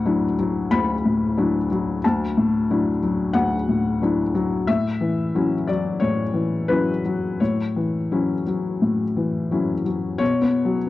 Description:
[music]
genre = neoclassical minimalist piano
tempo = 84-92 BPM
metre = 4/4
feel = rubato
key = unclear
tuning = A4 = 439 Hz
[part]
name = felt-muted upright piano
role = solo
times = 0.0-10.9 s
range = D2 to B5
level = -19 LUFS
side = left 2 dB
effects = cassette tape
[sound]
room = light reverb, small room ambience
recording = home recording on cassette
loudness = -19 LUFS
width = side -15 dB against mid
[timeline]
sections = 0.0-10.2 A section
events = none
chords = 0.0 Dadd9; 4.7 A6; 10.2 Bsus2

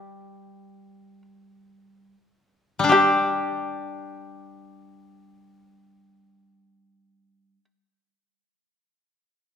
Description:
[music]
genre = japanese traditional, Japanese chamber music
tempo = free time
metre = none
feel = none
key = unclear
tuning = A4 = 441 Hz
[part]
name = shamisen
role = melody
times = 0.0-7.6 s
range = G4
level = -25 LUFS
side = right 2 dB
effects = none
[part]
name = koto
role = accompaniment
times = 0.0-7.7 s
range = G3 to G4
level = -20 LUFS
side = left 3 dB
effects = none
[sound]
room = moderate concert hall reverb, RT60 1.8 s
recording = none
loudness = -19 LUFS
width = side -8 dB against mid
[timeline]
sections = 0.0-2.9 A section; 2.9-8.3 B section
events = slowing down 0.0-2.9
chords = none

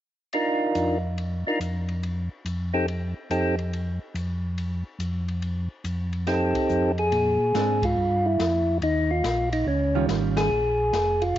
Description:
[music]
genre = soul jazz organ trio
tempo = 141 BPM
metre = 4/4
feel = swing 66% on 8ths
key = unclear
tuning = A4 = 443 Hz
[part]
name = percussive tonewheel organ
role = melody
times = 0.3-3.6, 6.3-11.4 s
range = C4 to Bb4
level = -24 LUFS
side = equal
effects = slow rotary speaker
[part]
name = open jazz drum kit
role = drums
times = 0.3-11.4 s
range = hi-hat, kick drum, ride cymbal, snare drum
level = -36 LUFS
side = left 4 dB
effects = none
[part]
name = mellow tonewheel organ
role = bass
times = 0.8-11.4 s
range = F1 to Bb2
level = -27 LUFS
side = equal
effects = chorus vibrato, slow rotary speaker
[part]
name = hollow-body jazz guitar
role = accompaniment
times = 7.5-10.5 s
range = Eb3 to F4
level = -27 LUFS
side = right 9 dB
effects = none
[sound]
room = wet spring reverb, RT60 1.9 s, small room ambience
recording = 1960s-style stereo, nothing above 7.6 kHz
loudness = -23 LUFS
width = side -12 dB against mid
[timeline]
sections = 0.3-7.1 A section; 7.1-11.4 B section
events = band accent 7.8, 10.3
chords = 0.3 Bbadd11/F; 3.7 N.C.; 5.4 F9; 7.1 Bb9; 8.8 Eb9; 10.5 Bb7(no3)

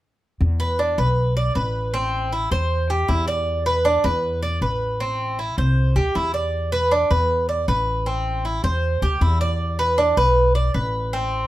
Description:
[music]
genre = latin, Cuban son and guajira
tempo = 157 BPM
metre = 4/4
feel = straight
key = E minor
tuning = A4 = 440 Hz
[part]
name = upright bass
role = bass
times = 0.4-11.5 s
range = A1 to E2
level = -22 LUFS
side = equal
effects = none
[part]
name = Cuban tres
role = arpeggios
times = 0.6-11.5 s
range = C4 to D5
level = -21 LUFS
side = right 1 dB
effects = none
[sound]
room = light reverb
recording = none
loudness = -18 LUFS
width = side -15 dB against mid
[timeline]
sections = 0.4-11.5 A section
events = none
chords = 0.4 E5; 1.9 Am7; 3.5 E5; 5.0 Am7; 6.5 E5; 8.1 Am7; 9.6 E5

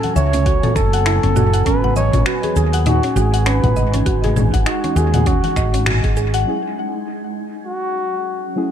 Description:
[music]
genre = organic downtempo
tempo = 100 BPM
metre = 4/4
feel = swing 58% on 16ths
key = F# dorian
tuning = A4 = 442 Hz
[part]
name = trumpet with bucket mute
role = melody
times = 0.0-8.5 s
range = F#4 to C#5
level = -22 LUFS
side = equal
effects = analog delay
[part]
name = granular cloud pad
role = sustained chords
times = 0.0-8.7 s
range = F#3 to G#5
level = -27 LUFS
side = right 1 dB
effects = built-in reverb, sidechain pumping
[part]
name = mallet-like synth pluck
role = arpeggios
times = 0.0-6.5 s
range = C#4 to F#5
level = -22 LUFS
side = right 1 dB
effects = chorus, analog delay
[part]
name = deep house drum kit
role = drums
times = 0.0-6.4 s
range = congas, finger snaps, hi-hat, shaker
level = -22 LUFS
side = left 2 dB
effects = overdrive, low-pass filter on hats, low-pass filter on perc, low-pass filter on snare, low-pass filter on room
[part]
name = congas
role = percussion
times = 0.0-5.5 s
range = none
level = -28 LUFS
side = left 3 dB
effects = none
[part]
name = woody fretless electric bass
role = bass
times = 0.2-6.4 s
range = F#1 to D#2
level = -17 LUFS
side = equal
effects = sidechain pumping
[part]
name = electronic kick drum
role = drums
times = 0.5-6.1 s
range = none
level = -20 LUFS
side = equal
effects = none
[part]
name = deep mellow chord stab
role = accompaniment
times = 6.5-8.7 s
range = F#3 to G#4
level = -25 LUFS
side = left 1 dB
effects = lush chorus, sidechain pumping, dub echo
[sound]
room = light reverb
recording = echo-heavy mix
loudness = -14 LUFS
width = side -9 dB against mid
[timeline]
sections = 0.0-6.5 A section; 6.5-8.7 B section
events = band accent 5.9; filter sweep on drum 6.5-8.7; filter sweep on ambient pad 6.5-8.7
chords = 0.0 F#m7; 1.7 G#5; 6.5 F#m7

